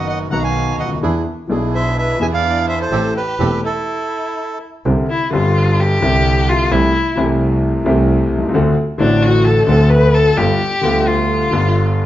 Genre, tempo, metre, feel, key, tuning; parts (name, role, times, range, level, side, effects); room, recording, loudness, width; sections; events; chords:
tango; 128 BPM; 4/4; rubato; C major from 4.9 s; A4 = 440 Hz
bandoneon; melody; 0.0-4.6 s; A4 to Bb5; -21 LUFS; right 3 dB
warm violin; second line; 0.0-12.0 s; D4 to F#5; -18 LUFS; left 2 dB
warm grand piano; accompaniment; 0.0-12.1 s; E1 to G#4; -17 LUFS; left 2 dB
bandoneon; stabs; 0.0-3.6 s; B3 to A4; -25 LUFS; right 6 dB
warm double bass; bass; 0.0-12.1 s; E1 to E2; -18 LUFS; right 2 dB
moderate large studio reverb, RT60 1.1 s; nothing above 7.6 kHz; -13 LUFS; side -13 dB against mid
0.0-4.9 A section; 4.9-12.1 B section
stop 3.9-4.9; violin solo 4.9-12.1
0.0 B; 1.0 E7; 2.9 Am7; 4.9 Csus2; 6.7 Am7/C; 8.5 D7; 10.4 G7